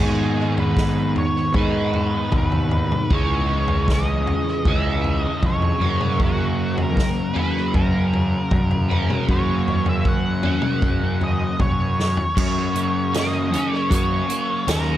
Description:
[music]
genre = psychedelic rock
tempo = 78 BPM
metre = 4/4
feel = straight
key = unclear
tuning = A4 = 440 Hz
[part]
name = octave-fuzz lead guitar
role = melody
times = 0.0-15.0 s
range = F#4 to F#5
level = -26 LUFS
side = equal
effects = distortion, tape echo
[part]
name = crunchy overdriven guitar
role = riff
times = 0.0-15.0 s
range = F#2 to D#4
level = -23 LUFS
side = right 1 dB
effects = flanger, tape echo
[part]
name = fuzz fingered electric bass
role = bass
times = 0.0-15.0 s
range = C#2 to G#2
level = -23 LUFS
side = equal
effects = overdrive
[part]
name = vintage drum kit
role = drums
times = 0.6-14.9 s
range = crash cymbal, hi-hat, kick drum, snare drum, toms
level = -23 LUFS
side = left 1 dB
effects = none
[sound]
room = little or no reverb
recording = echo-heavy mix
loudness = -18 LUFS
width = side -12 dB against mid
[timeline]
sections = 0.0-12.4 A section; 12.4-15.0 B section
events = drum fill 12.0-12.4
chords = 0.0 G#m; 3.1 C#madd9; 5.8 F#

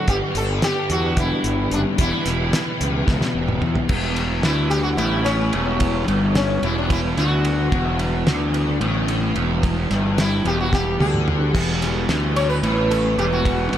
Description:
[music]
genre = psychedelic rock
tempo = 220 BPM (eighths)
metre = 7/8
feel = straight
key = E minor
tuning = A4 = 441 Hz
[part]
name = sitar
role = melody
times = 0.0-13.8 s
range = C#4 to C#5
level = -25 LUFS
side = equal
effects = analog delay
[part]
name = mellow tonewheel organ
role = sustained chords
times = 0.0-13.8 s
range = G3 to G5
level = -32 LUFS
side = right 10 dB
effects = chorus vibrato, fast rotary speaker
[part]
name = overdriven electric guitar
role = riff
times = 0.0-13.8 s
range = E2 to G4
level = -23 LUFS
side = left 2 dB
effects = rotary speaker, analog delay
[part]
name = fuzz fingered electric bass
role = bass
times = 0.1-13.8 s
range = E1 to E2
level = -23 LUFS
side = equal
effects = overdrive
[part]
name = cloth-damped thuddy drum kit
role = drums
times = 0.1-13.8 s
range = crash cymbal, hi-hat, kick drum, ride cymbal, snare drum, toms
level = -24 LUFS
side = equal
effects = none
[sound]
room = small room ambience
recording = echo-heavy mix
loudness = -18 LUFS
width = side -10 dB against mid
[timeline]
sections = 0.0-3.9 A section; 3.9-13.8 B section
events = drum fill 3.1-3.9, 10.7-11.5; sitar solo 3.9-13.8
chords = 0.1 G; 2.0 Em

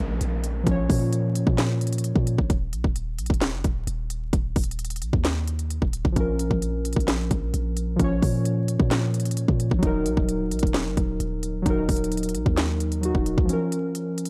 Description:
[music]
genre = hip hop, trap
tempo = 131 BPM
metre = 4/4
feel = half-time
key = Bb minor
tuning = A4 = 440 Hz
[part]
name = warbly lo-fi synth keys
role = accompaniment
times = 0.0-2.5, 6.1-14.3 s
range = F3 to Db5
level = -29 LUFS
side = equal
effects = chorus, low-pass filter
[part]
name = warm 808-style bass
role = bass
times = 0.0-13.5 s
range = Eb1 to Bb2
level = -29 LUFS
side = equal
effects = none
[part]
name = downlifter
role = sound effects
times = 0.0-2.5 s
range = none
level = -42 LUFS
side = equal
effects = none
[part]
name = trap drum kit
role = drums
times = 0.2-14.3 s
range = handclaps, hi-hat, kick drum, snare drum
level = -27 LUFS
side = equal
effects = none
[sound]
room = digital ambience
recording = dry, gritty hardware recording, vinyl crackle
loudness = -24 LUFS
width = mono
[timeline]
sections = 0.0-14.3 A section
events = break 2.5-6.2, 13.5-14.3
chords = 0.0 Bbm; 2.5 N.C.; 6.2 Bbm; 9.8 Ebm; 13.5 Bbm

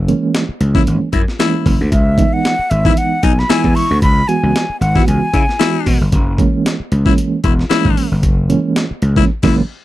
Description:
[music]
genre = funk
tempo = 114 BPM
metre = 4/4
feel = swing 56% on 16ths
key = unclear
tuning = A4 = 439 Hz
[part]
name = gritty slap bass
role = bass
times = 0.0-9.6 s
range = E1 to C#3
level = -15 LUFS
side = equal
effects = overdrive
[part]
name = mellow reed electric piano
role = stabs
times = 0.1-9.6 s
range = E3 to F#4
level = -17 LUFS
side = right 4 dB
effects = fast tremolo
[part]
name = breakbeat sampler-style drum kit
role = drums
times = 0.1-9.6 s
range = crash cymbal, hi-hat, kick drum, snare drum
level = -16 LUFS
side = equal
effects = none
[part]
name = growling baritone saxophone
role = second line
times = 0.7-9.6 s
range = D#4 to E4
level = -18 LUFS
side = left 13 dB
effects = none
[part]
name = breathy concert flute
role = melody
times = 1.9-5.8 s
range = E5 to C#6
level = -18 LUFS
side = left 1 dB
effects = none
[sound]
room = little or no reverb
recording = dry, close 1970s-style studio recording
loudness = -12 LUFS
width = side -15 dB against mid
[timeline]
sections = 0.0-9.8 A section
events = band accent 9.3-9.8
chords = 0.0 F#9; 1.9 C#m9; 6.1 F#9

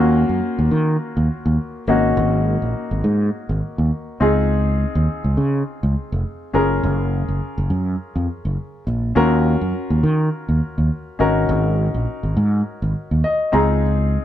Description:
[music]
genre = early-eighties boogie funk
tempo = 103 BPM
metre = 4/4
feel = swing 56% on 16ths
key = unclear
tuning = A4 = 440 Hz
[part]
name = clear grand piano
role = accompaniment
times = 0.0-14.2 s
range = Bb3 to Bb5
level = -22 LUFS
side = left 2 dB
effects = none
[part]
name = fretless electric bass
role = bass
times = 0.0-14.2 s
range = F1 to Eb3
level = -18 LUFS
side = right 1 dB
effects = none
[sound]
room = moderate studio reverb, RT60 0.7 s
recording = band playing live in one room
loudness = -17 LUFS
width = side -11 dB against mid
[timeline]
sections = 0.0-14.2 A section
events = grand piano fill 12.9-13.8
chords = 0.0 Ebm7; 1.9 Ab9sus4; 4.2 Dbmaj7; 6.5 Gbmaj7; 9.2 Ebm7; 11.2 Ab9sus4; 13.5 Dbmaj7

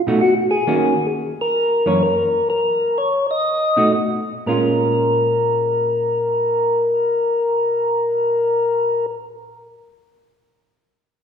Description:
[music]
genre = jazz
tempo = 114-134 BPM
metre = 4/4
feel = swing 66% on 8ths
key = Bb minor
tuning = A4 = 440 Hz
[part]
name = percussive tonewheel organ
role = melody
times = 0.0-9.1 s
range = F#4 to Eb5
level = -17 LUFS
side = left 1 dB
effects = slow rotary speaker
[part]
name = hollow-body jazz guitar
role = accompaniment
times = 0.1-9.1 s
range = Gb2 to F#4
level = -21 LUFS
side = right 2 dB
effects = none
[sound]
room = wet recital hall reverb, RT60 1.9 s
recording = recorded in a church or concert hall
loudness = -16 LUFS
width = side -7 dB against mid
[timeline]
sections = 0.0-4.5 A section; 4.5-8.7 B section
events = slowing down 0.7-4.5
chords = 0.0 B7; 0.7 Ebm7; 1.6 Gb7; 2.5 N.C.; 3.4 B7; 4.5 Bbm7

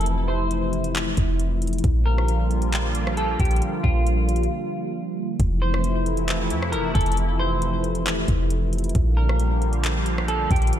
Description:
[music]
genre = hip hop, atmospheric cloud-rap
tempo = 135 BPM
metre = 4/4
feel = half-time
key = F major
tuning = A4 = 435 Hz
[part]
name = semi-hollow electric guitar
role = melody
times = 0.0-10.7 s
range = F4 to C5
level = -29 LUFS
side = equal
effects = lush chorus, low-pass filter, ping-pong delay
[part]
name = sweeping resonant pad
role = sustained chords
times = 0.0-10.8 s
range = C3 to F5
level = -26 LUFS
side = equal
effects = chorus, sidechain pumping
[part]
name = warm 808-style bass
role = bass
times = 0.0-10.7 s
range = F1 to F2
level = -22 LUFS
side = equal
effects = none
[part]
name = smooth R&B drum kit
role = drums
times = 0.0-10.8 s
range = handclaps, hi-hat, kick drum, rim click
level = -27 LUFS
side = equal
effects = none
[sound]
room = light reverb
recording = none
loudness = -20 LUFS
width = side -10 dB against mid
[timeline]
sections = 0.0-5.4 A section; 5.4-10.8 B section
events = break 4.5-5.4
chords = 0.0 Fmaj7; 1.8 Bb6; 5.4 Fmaj7; 9.0 Bb6

